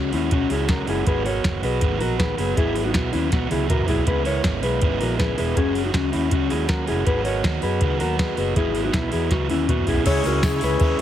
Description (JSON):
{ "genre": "jangly indie pop", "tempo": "160 BPM", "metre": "4/4", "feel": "straight", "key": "C# dorian", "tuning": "A4 = 439 Hz", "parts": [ { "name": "crunchy overdriven guitar", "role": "accompaniment", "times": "0.0-11.0 s", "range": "G#2 to F#4", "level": "-26 LUFS", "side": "right 7 dB", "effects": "none" }, { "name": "mellow electric guitar", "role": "arpeggios", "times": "0.0-11.0 s", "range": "B3 to C#5", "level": "-24 LUFS", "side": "left 4 dB", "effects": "digital delay" }, { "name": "vintage muted fingered electric bass", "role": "bass", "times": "0.0-11.0 s", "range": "E1 to C#3", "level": "-26 LUFS", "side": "equal", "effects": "none" }, { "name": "soft vintage rhythm box", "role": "drums", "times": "0.1-11.0 s", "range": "crash cymbal, hi-hat, kick drum, ride cymbal, snare drum, toms", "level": "-24 LUFS", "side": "equal", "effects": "none" }, { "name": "combo organ", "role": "accompaniment", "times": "10.1-11.0 s", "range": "E4 to C#5", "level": "-27 LUFS", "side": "left 5 dB", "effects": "none" }, { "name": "tambourine", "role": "percussion", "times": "10.1-10.9 s", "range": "none", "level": "-41 LUFS", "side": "left 4 dB", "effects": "none" } ], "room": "light reverb", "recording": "heavily compressed radio sound", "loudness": "-19 LUFS", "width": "side -11 dB against mid", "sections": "0.0-10.1 A section", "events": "drum fill 3.3-4.1, 9.3-10.1", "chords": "0.0 F#sus2; 1.1 G#m7; 2.6 Eadd9/G#; 4.1 C#m7; 5.6 F#sus2; 7.1 G#m7; 8.6 Eadd9/G#; 10.1 C#m" }